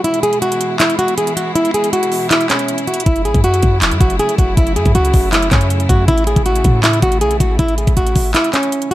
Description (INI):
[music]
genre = hip hop, trap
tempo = 159 BPM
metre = 4/4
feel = half-time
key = F# minor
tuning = A4 = 440 Hz
[part]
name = flamenco guitar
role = melody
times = 0.0-8.9 s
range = C#4 to G#4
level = -16 LUFS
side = equal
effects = low-pass filter
[part]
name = rich symphonic string section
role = sustained chords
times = 0.0-8.9 s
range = B2 to E4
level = -23 LUFS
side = left 1 dB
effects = none
[part]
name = trap drum kit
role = drums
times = 0.0-8.9 s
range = handclaps, hi-hat, kick drum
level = -16 LUFS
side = equal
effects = none
[part]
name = clean 808-style bass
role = bass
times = 3.1-8.3 s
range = E1 to A2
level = -16 LUFS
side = equal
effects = none
[sound]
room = studio ambience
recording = none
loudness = -12 LUFS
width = side -15 dB against mid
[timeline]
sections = 0.0-8.9 A section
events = break 0.0-3.1; kick muted 8.3-8.9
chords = 0.0 E; 3.1 F#m7; 6.1 A